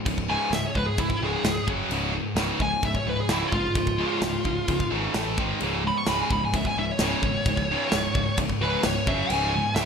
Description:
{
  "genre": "heavy metal",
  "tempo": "130 BPM",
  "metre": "4/4",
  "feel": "straight",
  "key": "unclear",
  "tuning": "A4 = 440 Hz",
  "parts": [
    { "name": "high-gain distorted guitar", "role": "riff", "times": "0.0-9.9 s", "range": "C#2 to A3", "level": "-27 LUFS", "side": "equal", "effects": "distortion" },
    { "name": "overdriven picked electric bass", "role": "bass", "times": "0.1-9.9 s", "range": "C#1 to A1", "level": "-32 LUFS", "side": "equal", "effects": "none" },
    { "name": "modern studio drum kit", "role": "drums", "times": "0.1-9.9 s", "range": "crash cymbal, kick drum, snare drum", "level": "-28 LUFS", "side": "equal", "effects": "none" },
    { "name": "high-gain lead guitar", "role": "melody", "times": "0.3-9.9 s", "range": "E4 to C#6", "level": "-27 LUFS", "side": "equal", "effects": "distortion" }
  ],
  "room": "moderate plate reverb, RT60 1.3 s, small room reverb",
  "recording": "bright 1980s-style digital production",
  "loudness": "-22 LUFS",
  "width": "side -6 dB against mid",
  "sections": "0.0-9.9 A section",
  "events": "lead electric guitar solo 0.0-9.9",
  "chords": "0.0 C#5; 1.7 F#5; 1.9 C#; 5.1 A5; 5.4 G#5; 5.6 C#5; 9.1 F#5; 9.3 C#5"
}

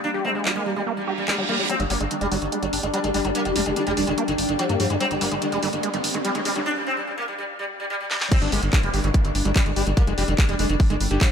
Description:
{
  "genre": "psychedelic trance",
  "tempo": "145 BPM",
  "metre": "4/4",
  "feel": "straight",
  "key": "G phrygian",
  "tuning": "A4 = 440 Hz",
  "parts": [
    { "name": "sitar", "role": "melody", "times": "0.0-11.3 s", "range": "D3 to D4", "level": "-27 LUFS", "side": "equal", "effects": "phaser, sidechain pumping, dub echo" },
    { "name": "pulsing gated texture", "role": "sustained chords", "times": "0.0-11.3 s", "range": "G3 to D4", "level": "-30 LUFS", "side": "left 2 dB", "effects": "chorus, built-in reverb, sidechain pumping" },
    { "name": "ethereal airy pad", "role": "texture", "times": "0.0-6.7 s", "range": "D4 to G5", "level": "-31 LUFS", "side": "left 2 dB", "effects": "ensemble chorus, built-in reverb, sidechain pumping" },
    { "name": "overdriven acid bass", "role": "riff", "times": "0.1-11.3 s", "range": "G3 to G4", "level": "-29 LUFS", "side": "moving between left 6 dB and right 6 dB", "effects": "auto-pan, sidechain pumping, dub echo" },
    { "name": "garage drum kit", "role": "drums", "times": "0.5-11.3 s", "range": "crash cymbal, handclaps, hi-hat, snare drum", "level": "-27 LUFS", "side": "equal", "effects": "none" },
    { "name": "reverse cymbal, riser, swell and downlifter", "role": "sound effects", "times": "1.0-11.3 s", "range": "none", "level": "-33 LUFS", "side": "right 2 dB", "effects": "none" },
    { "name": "round analog bass", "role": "bass", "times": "1.8-11.2 s", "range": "F1 to G2", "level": "-27 LUFS", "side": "equal", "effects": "none" },
    { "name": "electronic kick drum", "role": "drums", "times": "8.3-11.3 s", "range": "none", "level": "-18 LUFS", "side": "equal", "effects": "none" }
  ],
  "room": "light reverb, digital ambience",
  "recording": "high-pass filter",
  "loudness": "-20 LUFS",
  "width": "side -7 dB against mid",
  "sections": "0.0-1.7 A section; 1.7-8.3 B section; 8.3-11.3 C section",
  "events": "filter sweep on acid bass 0.0-1.7, 1.7-8.3; filter sweep on synth texture 0.0-1.7; reverse cymbal 1.0-1.7; build-up 1.7-8.3; filter sweep 1.7-8.3; break 6.7-8.3; swell 7.5-8.3; drum fill 8.1; drop 8.3-11.3",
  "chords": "0.0 G5"
}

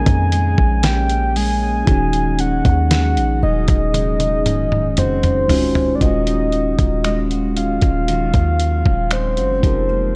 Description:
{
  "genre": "contemporary R&B",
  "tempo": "58 BPM",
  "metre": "4/4",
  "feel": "straight",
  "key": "Eb minor",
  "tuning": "A4 = 439 Hz",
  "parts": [
    { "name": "soft octave-layered synth lead", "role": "melody", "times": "0.0-10.2 s", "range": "C5 to Ab5", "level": "-24 LUFS", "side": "equal", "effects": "chorus, tape echo" },
    { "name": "mellow tine electric piano", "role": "accompaniment", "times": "0.0-10.2 s", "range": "Ab3 to C5", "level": "-27 LUFS", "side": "equal", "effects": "none" },
    { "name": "deep dark ambient pad", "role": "sustained chords", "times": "0.0-10.2 s", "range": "Eb3 to G5", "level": "-30 LUFS", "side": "equal", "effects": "none" },
    { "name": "fingerpicked steel-string acoustic guitar", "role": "arpeggios", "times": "0.0-10.2 s", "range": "Bb2 to Ab4", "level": "-28 LUFS", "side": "equal", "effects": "none" },
    { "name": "warm 808-style bass", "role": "bass", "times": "0.0-10.2 s", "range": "Eb1 to F2", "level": "-22 LUFS", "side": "equal", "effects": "none" },
    { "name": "dusty soul sampler-style drum kit", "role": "drums", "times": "0.1-9.9 s", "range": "finger snaps, hi-hat, kick drum, snare drum, toms", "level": "-20 LUFS", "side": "equal", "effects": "none" }
  ],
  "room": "light reverb",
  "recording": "dark, warm production",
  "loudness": "-17 LUFS",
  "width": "mono",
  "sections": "0.0-6.0 A section; 6.0-10.2 B section",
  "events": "drum fill 3.9-6.0",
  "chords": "0.0 Bbm11; 1.9 Ebm11; 9.6 Fm11"
}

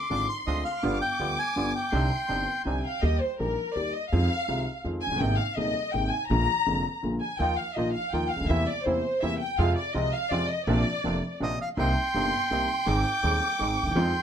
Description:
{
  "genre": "tango",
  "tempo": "165 BPM",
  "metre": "3/4",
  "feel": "rubato",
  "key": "C minor, Eb major from 3.0 s",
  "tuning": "A4 = 440 Hz",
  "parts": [
    { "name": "bandoneon", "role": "melody", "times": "0.0-2.6, 11.4-14.2 s", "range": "Eb5 to D6", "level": "-29 LUFS", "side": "equal", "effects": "plate reverb" },
    { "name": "warm studio violin section", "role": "second line", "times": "0.0-14.2 s", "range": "Bb4 to D6", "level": "-30 LUFS", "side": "left 1 dB", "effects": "none" },
    { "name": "warm upright piano", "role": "accompaniment", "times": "0.1-14.1 s", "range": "Eb1 to Ab4", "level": "-30 LUFS", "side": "equal", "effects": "none" },
    { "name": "bandoneon", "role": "stabs", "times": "0.1-2.8, 7.4-14.1 s", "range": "G3 to F4", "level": "-37 LUFS", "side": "right 7 dB", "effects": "none" },
    { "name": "upright bass", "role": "bass", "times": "0.1-14.1 s", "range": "F1 to F2", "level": "-29 LUFS", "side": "right 1 dB", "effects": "none" }
  ],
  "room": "light reverb",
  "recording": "none",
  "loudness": "-24 LUFS",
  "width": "side -8 dB against mid",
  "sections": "0.0-3.0 A section; 3.0-11.8 B section; 11.8-14.2 C section",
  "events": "violin section solo 3.0-11.8",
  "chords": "0.0 Dm7b5; 0.8 G7; 1.9 Cmadd9; 3.0 Eb; 4.1 Fm7; 5.2 Abadd9; 6.3 Bb7; 7.4 Ebsus2; 8.5 C7/E; 9.6 Fm; 10.7 Bbadd9; 11.8 Cm7; 12.9 Ab"
}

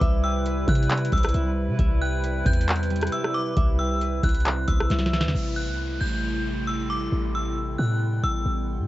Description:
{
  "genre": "hip hop, atmospheric cloud-rap",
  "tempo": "135 BPM",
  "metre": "4/4",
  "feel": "half-time",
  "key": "unclear",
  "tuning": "A4 = 442 Hz",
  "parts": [
    { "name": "warbly tape-like pad", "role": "sustained chords", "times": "0.0-8.9 s", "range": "C3 to B4", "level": "-30 LUFS", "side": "equal", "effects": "chorus, built-in reverb, sidechain pumping, cassette tape" },
    { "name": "concert harp", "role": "arpeggios", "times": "0.0-7.8 s", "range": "G3 to E5", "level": "-36 LUFS", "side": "right 3 dB", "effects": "cassette tape, analog delay" },
    { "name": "warm 808-style bass", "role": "bass", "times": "0.0-8.9 s", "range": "A1 to C3", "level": "-26 LUFS", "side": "equal", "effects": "none" },
    { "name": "booming analog drum machine", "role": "drums", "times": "0.0-5.4 s", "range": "handclaps, hi-hat, kick drum, rim click, snare drum", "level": "-22 LUFS", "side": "equal", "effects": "overdrive, cassette tape" },
    { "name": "drifting glass-harmonics texture", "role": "texture", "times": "0.0-8.9 s", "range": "C4 to C6", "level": "-41 LUFS", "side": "right 2 dB", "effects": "chorus, built-in reverb, cassette tape" },
    { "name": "metallic FM bell", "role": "melody", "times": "0.2-8.4 s", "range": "D6 to G6", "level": "-30 LUFS", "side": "left 1 dB", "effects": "chorus, cassette tape, analog delay" },
    { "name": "downlifter", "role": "sound effects", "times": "5.3-8.9 s", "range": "none", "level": "-40 LUFS", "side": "equal", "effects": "none" }
  ],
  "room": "light reverb",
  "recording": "home recording on cassette, nothing above 7.8 kHz",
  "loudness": "-22 LUFS",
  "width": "side -16 dB against mid",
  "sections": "0.0-5.3 A section; 5.3-8.9 B section",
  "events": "drum fill 4.9-5.3",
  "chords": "0.0 Cmaj7; 5.3 Am7"
}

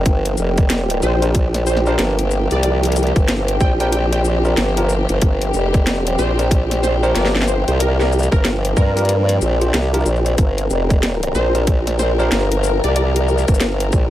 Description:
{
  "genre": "glitch hop",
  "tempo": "93 BPM",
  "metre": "4/4",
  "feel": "swing 62% on 16ths",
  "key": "G minor pentatonic",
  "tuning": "A4 = 440 Hz",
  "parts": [
    { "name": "dark chamber string section", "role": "sustained chords", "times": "0.0-14.1 s", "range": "F3 to Bb4", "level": "-25 LUFS", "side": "left 3 dB", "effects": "vintage 12-bit sampler grit, sidechain pumping" },
    { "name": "formant-sweep wobble bass", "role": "bass", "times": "0.0-14.1 s", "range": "F1 to G2", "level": "-17 LUFS", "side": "equal", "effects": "chorus, tube saturation" },
    { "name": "warbly tape-like pad", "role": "texture", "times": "0.0-14.1 s", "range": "F4 to G5", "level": "-27 LUFS", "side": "right 2 dB", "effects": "chorus, built-in reverb, sidechain pumping" },
    { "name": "drum and bass drum kit", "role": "drums", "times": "0.1-14.1 s", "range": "hi-hat, shaker, snare drum", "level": "-22 LUFS", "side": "equal", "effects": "overdrive" },
    { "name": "electronic kick drum", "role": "drums", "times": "0.1-14.1 s", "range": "none", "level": "-15 LUFS", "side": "equal", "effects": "overdrive" },
    { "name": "plucky unison lead", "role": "melody", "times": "1.0-13.1 s", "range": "Bb4 to G5", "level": "-26 LUFS", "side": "equal", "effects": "wide subtle chorus, cassette tape, ping-pong delay" },
    { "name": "bell-like tine electric piano", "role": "stabs", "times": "1.2-12.5 s", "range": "D4 to C5", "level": "-26 LUFS", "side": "equal", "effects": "sidechain pumping, ping-pong delay" }
  ],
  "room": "light reverb",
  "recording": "none",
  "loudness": "-14 LUFS",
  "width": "side -13 dB against mid",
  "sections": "0.0-14.1 A section",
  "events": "none",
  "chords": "0.0 Gm7"
}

